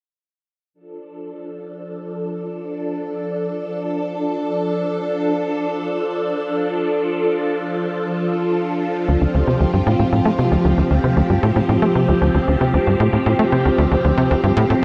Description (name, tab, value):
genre	ambient, sequencer-driven space music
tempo	115 BPM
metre	4/4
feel	straight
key	D minor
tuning	A4 = 440 Hz
part	phased string machine	sustained chords	0.9-14.8 s	F3 to A4	-22 LUFS	equal	ensemble chorus, phaser, shimmer reverb
part	tight sequencer bass	riff	9.1-14.7 s	D2 to A3	-19 LUFS	equal	analog chorus, analog delay
room	wet huge ambient reverb, RT60 8.3 s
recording	dark, warm production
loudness	-19 LUFS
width	mono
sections	0.7-14.8 A section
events	none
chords	0.7 Dm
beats	| 0.74 1.26 1.78 2.30 | 2.83 3.35 3.87 4.39 | 4.91 5.43 5.96 6.48 | 7.00 7.52 8.04 8.56 | 9.09 9.61 10.13 10.65 | 11.17 11.70 12.22 12.74 | 13.26 13.78 14.30 14.83